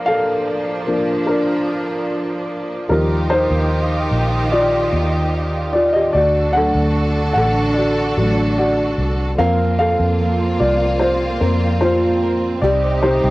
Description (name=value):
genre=pop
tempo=74 BPM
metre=4/4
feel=straight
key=unclear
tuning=A4 = 441 Hz
part: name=dark grand piano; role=accompaniment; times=0.0-13.3 s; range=C3 to F#5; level=-18 LUFS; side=left 1 dB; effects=cassette tape
part: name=clear studio string section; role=sustained chords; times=0.0-13.3 s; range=C3 to A4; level=-22 LUFS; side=right 1 dB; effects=cassette tape
part: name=vintage muted fingered electric bass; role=bass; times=2.9-13.3 s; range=A1 to F2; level=-20 LUFS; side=equal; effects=none
part: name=picked steel-string acoustic guitar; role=arpeggios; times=9.4-13.3 s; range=C3 to Bb4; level=-26 LUFS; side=right 5 dB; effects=cassette tape
room=moderate small room reverb, RT60 0.5 s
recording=home recording on cassette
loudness=-15 LUFS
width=side -19 dB against mid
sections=0.0-9.4 A section; 9.4-13.3 B section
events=grand piano solo 0.0-9.4, 9.4-13.3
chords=0.0 Bb; 2.9 Ebadd9; 6.1 D; 9.4 Fsus4; 12.6 Cm